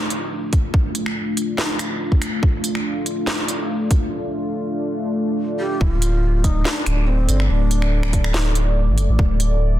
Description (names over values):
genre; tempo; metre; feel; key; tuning
deep dubstep; 142 BPM; 4/4; swing 53% on 16ths, half-time; D minor; A4 = 438 Hz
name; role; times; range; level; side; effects
dark analog pad; sustained chords; 0.0-9.8 s; A3 to D5; -24 LUFS; left 1 dB; chorus
saturated sub bass; bass; 0.1-9.8 s; D1 to A1; -18 LUFS; equal; tube saturation, high-pass filter
garage drum kit; drums; 0.1-9.5 s; finger snaps, hi-hat, snare drum; -25 LUFS; equal; none
electronic kick drum; drums; 0.5-9.3 s; none; -19 LUFS; equal; none
breathy low ney; melody; 5.6-8.3 s; C4 to G4; -28 LUFS; right 2 dB; vintage 12-bit sampler grit, dub echo
room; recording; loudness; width
light reverb; dense, heavily limited modern master; -18 LUFS; side -13 dB against mid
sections
0.0-5.8 A section; 5.8-9.8 B section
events
build-up 0.0-5.8; filter sweep on analog synth pad 0.0-5.8; break 4.1-5.8; drop 5.8-9.8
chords
0.0 D5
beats
0.32 | 0.74 1.16 1.58 2.01 | 2.43 2.85 3.27 3.70 | 4.12 4.54 4.96 5.39 | 5.81 6.23 6.65 7.08 | 7.50 7.92 8.34 8.77 | 9.19 9.61